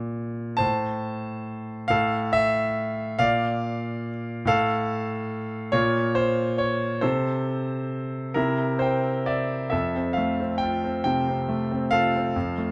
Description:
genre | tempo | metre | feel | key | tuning
classical, lyrical solo piano | 46 BPM (dotted quarters) | 6/8 | rubato | F major | A4 = 441 Hz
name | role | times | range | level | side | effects
bright concert grand piano | solo | 0.0-12.7 s | F2 to A5 | -25 LUFS | equal | none
room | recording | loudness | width
light reverb | close, detailed microphones | -25 LUFS | mono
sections
0.0-9.7 A section; 9.7-12.7 B section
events
grand piano fill 8.4-9.7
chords
0.0 N.C.; 0.6 Am; 1.9 N.C.; 3.2 Bb; 4.5 N.C.; 5.7 Bb5; 7.0 Am/C; 8.4 C; 9.7 F

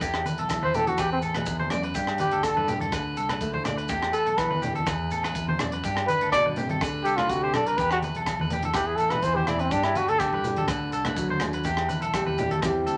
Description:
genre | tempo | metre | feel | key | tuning
highlife guitar band | 124 BPM | 4/4 | straight | G major | A4 = 440 Hz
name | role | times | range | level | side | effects
nylon-string guitar | accompaniment | 0.0-13.0 s | E2 to G4 | -34 LUFS | equal | none
electric guitar at the edge of break-up | arpeggios | 0.0-13.0 s | G4 to D5 | -32 LUFS | equal | none
fingered electric bass | bass | 0.0-13.0 s | A1 to G2 | -38 LUFS | equal | none
tight funk drum kit | drums | 0.0-13.0 s | hi-hat, kick drum, rim click | -36 LUFS | equal | none
maracas | percussion | 0.0-13.0 s | none | -46 LUFS | equal | none
agogo bells | percussion | 0.1-12.8 s | none | -42 LUFS | equal | none
congas | percussion | 0.3-12.7 s | none | -35 LUFS | equal | none
breathy trumpet | melody | 0.6-10.7 s | C4 to D5 | -26 LUFS | equal | none
room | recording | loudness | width
wet club reverb, RT60 0.6 s | nothing above 10.9 kHz | -26 LUFS | mono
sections
0.0-13.0 A section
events
trumpet solo 0.0-13.0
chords
0.0 Em; 1.0 N.C.; 2.0 Gsus2; 2.9 D5; 3.9 Em; 4.9 N.C.; 5.8 Gsus2; 6.8 D5; 7.8 Em; 8.8 C; 9.7 Gsus2; 10.7 D; 11.7 Em

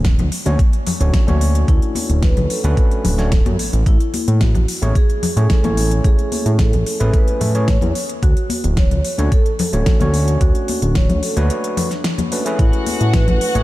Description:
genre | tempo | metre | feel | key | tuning
nu-disco, nu disco | 110 BPM | 4/4 | straight | unclear | A4 = 440 Hz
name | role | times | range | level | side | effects
fat analog bass | bass | 0.0-13.6 s | D1 to A2 | -16 LUFS | equal | none
electronic kick drum | drums | 0.0-13.2 s | none | -15 LUFS | equal | studio reverb
pop drum kit | drums | 0.0-13.6 s | hi-hat, snare drum | -26 LUFS | left 1 dB | studio reverb
congas | percussion | 0.2-13.6 s | none | -26 LUFS | left 4 dB | none
overdriven tine electric piano | accompaniment | 0.5-13.6 s | A3 to C#5 | -25 LUFS | equal | analog delay
vibraphone with soft mallets | melody | 1.7-13.6 s | D4 to C#5 | -25 LUFS | right 1 dB | analog delay
warm studio string section | sustained chords | 12.6-13.6 s | F#4 to F#5 | -25 LUFS | left 1 dB | sidechain pumping
room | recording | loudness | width
light reverb, studio reverb | none | -14 LUFS | side -17 dB against mid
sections
0.0-13.6 A section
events
break 11.5-12.6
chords
0.0 Dmaj7; 3.9 Amaj7; 8.0 Dmaj7; 12.6 Amaj7

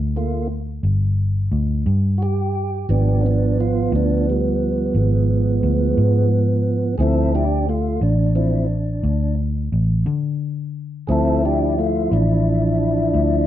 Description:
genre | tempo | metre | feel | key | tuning
slow blues | 59 BPM (dotted quarters) | 12/8 | straight | D minor | A4 = 440 Hz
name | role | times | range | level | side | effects
vintage muted fingered electric bass | bass | 0.0-13.5 s | G1 to D3 | -19 LUFS | equal | none
tonewheel organ | sustained chords | 0.2-13.5 s | E#3 to A4 | -20 LUFS | right 1 dB | overdrive, slow rotary speaker
room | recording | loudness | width
moderate studio reverb, RT60 1.0 s | band playing live in one room | -17 LUFS | side -12 dB against mid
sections
0.0-13.5 A section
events
tonewheel organ solo 0.0-13.5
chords
0.0 G5; 2.9 G#dim7; 7.0 Dm7

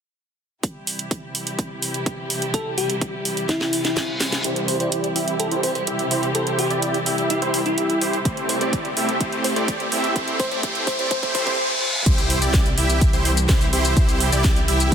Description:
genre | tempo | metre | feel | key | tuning
EDM, festival progressive house | 126 BPM | 4/4 | straight | unclear | A4 = 440 Hz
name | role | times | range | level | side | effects
dark symphonic string section | sustained chords | 0.6-14.9 s | C3 to G4 | -28 LUFS | left 1 dB | vintage 12-bit sampler grit, sidechain pumping
electronic kick drum | drums | 0.6-4.1, 8.3-14.9 s | none | -20 LUFS | equal | high-pass filter on kick
house drum kit | drums | 0.6-14.9 s | crash cymbal, hi-hat, shaker, snare drum | -25 LUFS | right 1 dB | high-pass filter on hats, high-pass filter on snare, high-pass filter on cymbals, high-pass filter on perc
bell-like FM electric piano | melody | 2.5-11.5 s | E4 to C5 | -27 LUFS | left 1 dB | chorus, cassette tape, tape echo
reverse cymbal, riser and impact | sound effects | 3.7-14.0 s | none | -28 LUFS | equal | none
supersaw chords | riff | 4.4-14.9 s | A3 to E5 | -23 LUFS | right 1 dB | sidechain pumping, low-pass filter, tape echo
detuned saw bass | bass | 4.4-14.9 s | A1 to C2 | -27 LUFS | equal | sidechain pumping, high-pass filter
room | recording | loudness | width
moderate concert hall reverb, RT60 1.7 s, digital ambience | dense, heavily limited modern master, high-pass filter | -19 LUFS | side -8 dB against mid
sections
0.6-4.4 A section; 4.4-12.1 B section; 12.1-14.9 C section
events
drum fill 3.5-4.4, 8.3-11.6; reverse cymbal 3.7-4.4, 11.1-12.1; build-up 4.4-12.1; riser 4.4-12.1; filter sweep on supersaw synth 4.4-12.1; filter sweep 4.4-12.1; drop 12.1-14.9; impact 12.1-14.0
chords
0.6 C; 8.3 Am7; 12.1 C

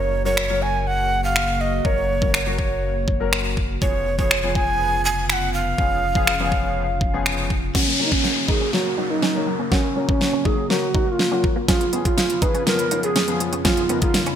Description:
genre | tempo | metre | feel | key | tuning
dance-pop | 122 BPM | 4/4 | straight | F# major | A4 = 441 Hz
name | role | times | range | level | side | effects
breathy mellow tenor recorder | melody | 0.0-14.4 s | C#4 to G#5 | -23 LUFS | right 2 dB | low-pass filter, digital delay
warm grand piano | accompaniment | 0.0-14.2 s | E#3 to A#4 | -29 LUFS | left 7 dB | ensemble chorus, sidechain pumping, low-pass filter
chorused pulse-width pad | sustained chords | 0.0-14.4 s | E#2 to F#4 | -30 LUFS | left 1 dB | sidechain pumping, low-pass filter
warm sub bass | bass | 0.0-7.7 s | E#1 to F#1 | -27 LUFS | equal | sidechain pumping
pop drum kit | drums | 0.4-14.4 s | crash cymbal, finger snaps, hi-hat, kick drum, snare drum | -21 LUFS | equal | gated reverb
analog pluck | arpeggios | 7.7-14.3 s | E#3 to A#6 | -33 LUFS | left 2 dB | none
direct-recorded clean electric guitar | riff | 7.8-14.3 s | A#3 to F#4 | -32 LUFS | right 6 dB | ensemble chorus, low-pass filter
downlifter | sound effects | 7.8-11.7 s | none | -25 LUFS | left 2 dB | none
room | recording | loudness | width
moderate lush hall reverb, RT60 1.8 s | bright 1980s-style digital production | -18 LUFS | side -9 dB against mid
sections
0.0-7.8 A section; 7.8-14.4 B section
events
build-up 7.8-14.4; drum fill 7.8-14.4; filter sweep 7.8-14.4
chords
0.0 F#; 3.8 C#7/E#; 7.8 F#; 11.7 C#7/E#

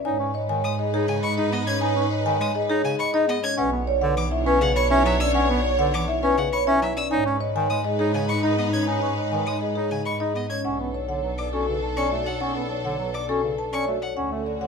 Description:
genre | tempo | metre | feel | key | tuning
classical, minimalist pattern music | 102 BPM | 3/4 | straight | unclear | A4 = 440 Hz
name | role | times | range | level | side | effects
marimba with medium mallets | melody | 0.0-14.7 s | G#4 to B5 | -26 LUFS | left 8 dB | none
vibraphone with soft mallets | arpeggios | 0.0-14.7 s | C#4 to D#5 | -29 LUFS | right 11 dB | none
warm bass clarinet | accompaniment | 0.1-14.7 s | C#3 to D#4 | -27 LUFS | right 1 dB | none
warm symphonic violin section | sustained chords | 0.1-14.7 s | C#4 to C#5 | -31 LUFS | left 2 dB | none
rich symphonic double bass section | bass | 0.1-14.7 s | B1 to G#2 | -28 LUFS | right 2 dB | none
rich violin | arpeggios | 0.6-14.1 s | D#5 to G#6 | -30 LUFS | left 3 dB | none
room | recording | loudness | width
light reverb | minimal, uncompressed stereo recording | -21 LUFS | side -5 dB against mid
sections
0.0-10.6 A section; 10.6-14.7 B section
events
none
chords
0.1 G#m; 3.6 Bmadd9; 7.1 G#m; 10.6 Bm7

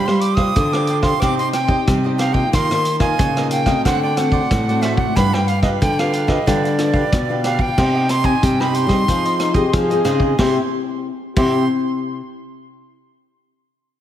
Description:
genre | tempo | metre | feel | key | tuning
samba and choro | 92 BPM | 4/4 | straight | C harmonic minor | A4 = 440 Hz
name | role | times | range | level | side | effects
bright reedy jazz flute | melody | 0.0-11.7 s | D5 to Eb6 | -22 LUFS | right 2 dB | tape echo
cavaquinho | accompaniment | 0.0-11.6 s | D4 to F5 | -26 LUFS | right 5 dB | none
nylon-string guitar | accompaniment | 0.0-12.2 s | G2 to D5 | -23 LUFS | left 3 dB | wide subtle chorus
nylon-string guitar | bass | 0.0-11.7 s | G2 to G3 | -20 LUFS | equal | none
vintage drum kit | drums | 0.1-11.5 s | crash cymbal, hi-hat, kick drum, rim click, snare drum | -21 LUFS | equal | none
breathy trombone | second line | 9.4-11.7 s | Eb4 to Ab4 | -22 LUFS | left 4 dB | none
room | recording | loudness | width
moderate lush hall reverb, RT60 1.8 s, studio ambience | dreamy mix soaked in reverb | -15 LUFS | side -11 dB against mid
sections
0.0-7.8 A section; 7.8-10.4 B section; 10.4-13.0 C section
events
none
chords
0.0 G7sus4; 1.2 Cmadd9; 2.5 Ebsus2; 3.8 D7; 5.2 G7; 7.8 Cm; 9.1 Fm7; 10.4 C

